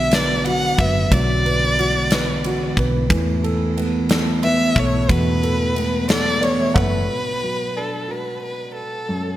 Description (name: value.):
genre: six-eight pop ballad.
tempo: 60 BPM (dotted quarters).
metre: 6/8.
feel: straight.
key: B minor.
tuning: A4 = 439 Hz.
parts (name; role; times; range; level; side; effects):
warm violin; melody; 0.0-9.4 s; A4 to F#5; -22 LUFS; equal; none.
dark upright piano; accompaniment; 0.0-9.4 s; F#2 to F#5; -24 LUFS; right 1 dB; wide subtle chorus.
mellow tonewheel organ; sustained chords; 0.0-7.1 s; D3 to B3; -24 LUFS; equal; slow rotary speaker.
hollow-body short-scale fingered electric bass; bass; 0.0-7.1 s; F#1 to E2; -23 LUFS; equal; none.
huge arena drum kit; drums; 0.1-6.9 s; kick drum, ride cymbal, snare drum; -23 LUFS; equal; gated reverb.
room: moderate lush hall reverb, RT60 2.1 s.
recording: bright 1980s-style digital production.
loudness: -17 LUFS.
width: side -13 dB against mid.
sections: 0.0-7.1 A section; 7.1-9.4 B section.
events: upright piano fill 6.1-7.1.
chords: 0.0 Bm; 3.1 Esus4; 7.1 Bm.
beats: 0.12 | 1.12 2.11 | 3.11 4.10 | 5.10 6.10 | 7.09 8.09 | 9.09.